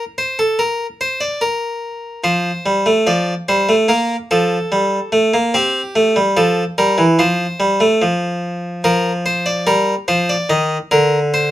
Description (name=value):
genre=classical, baroque-style two-part invention for harpsichord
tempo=72 BPM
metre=4/4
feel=straight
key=unclear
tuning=A4 = 441 Hz
part: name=harpsichord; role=solo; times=0.0-11.5 s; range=D3 to Eb5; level=-14 LUFS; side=equal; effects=none
room=light reverb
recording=none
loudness=-14 LUFS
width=side -14 dB against mid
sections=0.0-11.5 A section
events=none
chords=0.0 N.C.; 2.3 F; 3.9 Gm; 5.5 C7; 7.2 F; 8.9 Bb/F; 10.5 Cm